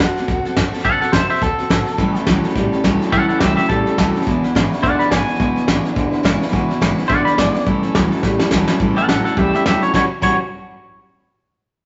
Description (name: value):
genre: rockabilly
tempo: 211 BPM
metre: 4/4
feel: swing 58% on 8ths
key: A mixolydian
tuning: A4 = 439 Hz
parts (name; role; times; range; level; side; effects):
- twangy electric guitar; melody; 0.0-10.4 s; G4 to B5; -21 LUFS; equal; none
- picked steel-string acoustic guitar; accompaniment; 0.0-10.4 s; A2 to B4; -23 LUFS; equal; none
- upright bass; bass; 0.0-10.4 s; E1 to A2; -30 LUFS; equal; none
- soft brush drum kit; drums; 0.0-10.3 s; crash cymbal, hi-hat, kick drum, snare drum; -22 LUFS; equal; none
- electric guitar through a small old amp; riff; 2.0-10.4 s; E2 to F#4; -23 LUFS; equal; none
room: moderate large studio reverb, RT60 1.2 s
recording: nothing above 7.8 kHz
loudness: -17 LUFS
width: mono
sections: 0.0-8.8 A section; 8.8-9.9 B section; 9.9-11.1 C section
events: drum fill 8.2-8.8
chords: 0.0 D7; 2.0 A7; 4.3 E7; 7.7 A7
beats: 0.00 0.29 0.57 | 0.86 1.14 1.42 1.71 | 1.99 2.28 2.56 2.84 | 3.13 3.41 3.69 3.98 | 4.26 4.55 4.83 5.12 | 5.40 5.68 5.97 6.25 | 6.54 6.82 7.10 7.39 | 7.67 7.95 8.24 8.52 | 8.80 9.09 9.37 9.66 | 9.94 10.22